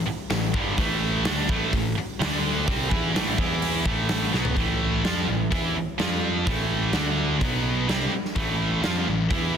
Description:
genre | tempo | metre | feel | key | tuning
hard rock | 127 BPM | 4/4 | straight | A minor | A4 = 441 Hz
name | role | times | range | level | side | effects
high-gain distorted guitar | riff | 0.0-9.6 s | G2 to F4 | -27 LUFS | right 11 dB | distortion
scooped high-gain guitar | riff | 0.0-9.5 s | G2 to F4 | -28 LUFS | left 10 dB | distortion
fuzz picked electric bass | bass | 0.0-9.6 s | G1 to F2 | -29 LUFS | equal | overdrive
huge arena drum kit | drums | 0.3-9.4 s | hi-hat, kick drum, snare drum, toms | -27 LUFS | equal | none
room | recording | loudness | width
little or no reverb | dense, heavily limited modern master | -22 LUFS | side -8 dB against mid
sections
0.0-4.6 A section; 4.6-9.6 B section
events
drum fill 4.3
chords
0.0 A5; 2.2 D5; 2.7 Am; 3.4 E5; 3.9 A5; 4.6 Am; 6.0 F5; 6.5 A5; 6.9 D5; 7.4 B5; 7.9 Am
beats
0.30 | 0.78 1.25 1.73 2.20 | 2.67 3.15 3.62 4.09 | 4.57 5.04 5.51 5.99 | 6.46 6.94 7.41 7.88 | 8.36 8.83 9.30

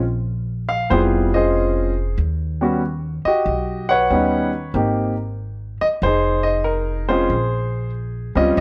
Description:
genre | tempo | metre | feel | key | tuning
jazz piano trio | 94 BPM | 4/4 | swing 67% on 8ths | unclear | A4 = 440 Hz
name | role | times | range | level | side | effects
warm concert grand piano | melody | 0.0-8.6 s | G3 to F#5 | -21 LUFS | equal | none
upright bass | bass | 0.0-8.6 s | F1 to Eb2 | -25 LUFS | equal | none
room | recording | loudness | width
moderate spring reverb, RT60 1.3 s | none | -20 LUFS | mono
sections
0.0-8.6 A section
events
none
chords
0.0 Bbm9; 2.2 Eb7alt; 4.7 Abmaj9; 6.0 Fm7; 7.3 Bbm9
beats
0.27 0.91 1.55 | 2.19 2.83 3.46 4.10 | 4.74 5.38 6.02 6.66 | 7.30 7.93 8.57

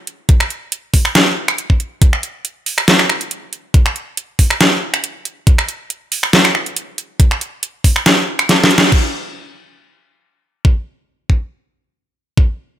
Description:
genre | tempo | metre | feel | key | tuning
dubstep | 139 BPM | 4/4 | swing 53% on 16ths, half-time | none | none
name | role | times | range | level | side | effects
dubstep drum kit | drums | 0.1-9.0 s | crash cymbal, finger snaps, hi-hat, snare drum | -13 LUFS | equal | none
electronic kick drum | drums | 0.3-12.5 s | none | -11 LUFS | equal | none
room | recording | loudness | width
light reverb | none | -13 LUFS | side -12 dB against mid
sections
0.0-8.9 A section; 8.9-12.8 B section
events
drop 0.0-8.9; drum fill 8.5-8.9; band accent 8.8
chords
none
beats
| 0.29 0.72 1.15 1.58 | 2.02 2.45 2.88 3.31 | 3.74 4.17 4.61 5.04 | 5.47 5.90 6.33 6.76 | 7.20 7.63 8.06 8.49 | 8.92 9.35 9.79 10.22 | 10.65 11.08 11.51 11.94 | 12.38

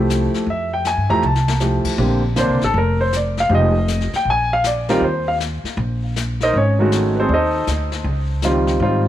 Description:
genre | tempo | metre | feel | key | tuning
jazz piano trio | 158 BPM | 4/4 | swing 65% on 8ths | unclear | A4 = 441 Hz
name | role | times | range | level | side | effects
warm grand piano | melody | 0.0-9.0 s | D3 to Bb5 | -18 LUFS | equal | tape echo
upright bass | bass | 0.0-9.1 s | F1 to Ab2 | -20 LUFS | equal | none
jazz brush drum kit | drums | 0.1-9.1 s | brushed snare drum, crash cymbal, hi-hat, kick drum, snare drum, toms | -29 LUFS | left 6 dB | none
room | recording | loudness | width
light reverb, small room ambience | 1960s-style stereo | -16 LUFS | side -12 dB against mid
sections
0.0-2.0 A section; 2.0-9.1 B section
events
drum fill 1.2-1.6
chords
0.0 Fmaj9; 2.0 Bbadd9; 3.5 Fm9; 4.3 Bb5; 5.0 Eb5; 6.5 Ab7b9; 8.0 Dbmaj9#11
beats
0.10 | 0.47 0.85 1.23 1.61 | 1.99 2.37 2.75 3.13 | 3.51 3.89 4.26 4.64 | 5.02 5.40 5.78 6.16 | 6.54 6.91 7.29 7.67 | 8.05 8.43 8.80

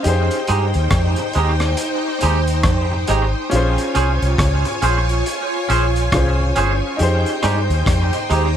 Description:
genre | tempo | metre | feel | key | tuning
lovers rock reggae | 69 BPM | 4/4 | swing 61% on 16ths | F minor | A4 = 440 Hz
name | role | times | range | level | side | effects
string machine, violins | second line | 0.0-8.6 s | Eb4 to Ab5 | -22 LUFS | equal | ensemble chorus
clear baby grand piano | accompaniment | 0.0-8.6 s | Db4 to C5 | -25 LUFS | left 1 dB | dub echo, plate reverb
crunchy breakbeat drum kit | drums | 0.0-8.5 s | hi-hat, kick drum, rim click | -24 LUFS | equal | dub echo
vintage muted fingered electric bass | bass | 0.1-8.6 s | G1 to G2 | -18 LUFS | equal | none
twangy electric guitar | stabs | 0.5-8.5 s | Ab3 to C5 | -23 LUFS | right 4 dB | wide subtle chorus, dub echo
room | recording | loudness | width
light reverb | none | -15 LUFS | side -9 dB against mid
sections
0.0-8.6 A section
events
none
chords
0.0 Fm9; 3.5 Bbm9; 7.0 Fm9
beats
| 0.04 0.91 1.78 2.65 | 3.51 4.38 5.25 6.12 | 6.99 7.86

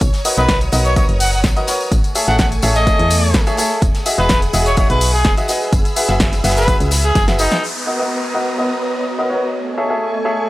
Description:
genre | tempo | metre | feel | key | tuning
piano house | 126 BPM | 4/4 | straight | B major | A4 = 445 Hz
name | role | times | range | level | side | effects
string machine, violins | sustained chords | 0.0-10.5 s | A3 to D#6 | -24 LUFS | equal | ensemble chorus, sidechain pumping
solid FM bass | bass | 0.0-7.5 s | E1 to E2 | -18 LUFS | equal | sidechain pumping
crisp fusion drum kit | drums | 0.0-7.6 s | hi-hat, snare drum | -30 LUFS | left 1 dB | none
electronic kick drum | drums | 0.0-7.3 s | none | -17 LUFS | equal | none
punchy analog drum machine | drums | 0.0-7.6 s | hi-hat, snare drum | -21 LUFS | equal | none
tambourine | percussion | 0.0-7.6 s | none | -27 LUFS | left 3 dB | none
clear baby grand piano | riff | 0.2-10.5 s | F#4 to E5 | -20 LUFS | equal | sidechain pumping, low-pass filter
clear trumpet | melody | 0.4-7.6 s | D#4 to F#5 | -20 LUFS | equal | tape echo
downlifter | sound effects | 7.6-10.5 s | none | -27 LUFS | equal | none
ethereal airy pad | texture | 8.5-10.5 s | A3 to B5 | -27 LUFS | right 1 dB | ensemble chorus, built-in reverb, sidechain pumping
room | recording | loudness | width
light reverb, studio reverb | dry, gritty hardware recording | -13 LUFS | side -17 dB against mid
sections
0.0-7.6 A section; 7.6-10.5 B section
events
drum fill 7.2-7.6; filter sweep on grand piano 7.6-10.5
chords
0.0 Bmaj7; 1.9 Amaj7; 3.8 Emaj9; 5.5 F#9sus4; 7.6 Bmaj7; 9.5 Amaj7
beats
| 0.01 0.49 0.96 1.44 | 1.92 2.39 2.87 3.35 | 3.82 4.30 4.77 5.25 | 5.73 6.20 6.68 7.16 | 7.63 8.11 8.58 9.06 | 9.54 10.01 10.49

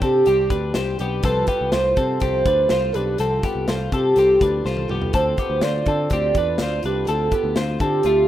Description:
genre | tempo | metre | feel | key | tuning
jangly indie pop | 123 BPM | 4/4 | straight | unclear | A4 = 441 Hz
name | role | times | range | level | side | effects
hollow clarinet-like synth lead | melody | 0.0-8.3 s | G4 to D5 | -19 LUFS | right 1 dB | chorus, slapback echo
picked plugged-in twelve-string acoustic guitar | accompaniment | 0.0-8.3 s | C3 to A4 | -31 LUFS | right 4 dB | none
twelve-string electric guitar | arpeggios | 0.0-8.3 s | A3 to C5 | -26 LUFS | left 5 dB | none
picked electric bass | bass | 0.0-8.2 s | B1 to D3 | -25 LUFS | left 1 dB | none
modern studio drum kit | drums | 0.0-8.2 s | hi-hat, kick drum, snare drum, toms | -26 LUFS | left 1 dB | none
room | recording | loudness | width
light reverb, small room reverb | rough home demo mix | -18 LUFS | side -12 dB against mid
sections
0.0-8.3 A section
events
drum fill 4.7-5.1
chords
0.0 Csus2; 1.2 Fadd9; 5.1 Dm7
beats
0.27 0.76 | 1.25 1.73 2.22 2.71 | 3.19 3.68 4.17 4.65 | 5.14 5.63 6.11 6.60 | 7.08 7.57 8.05

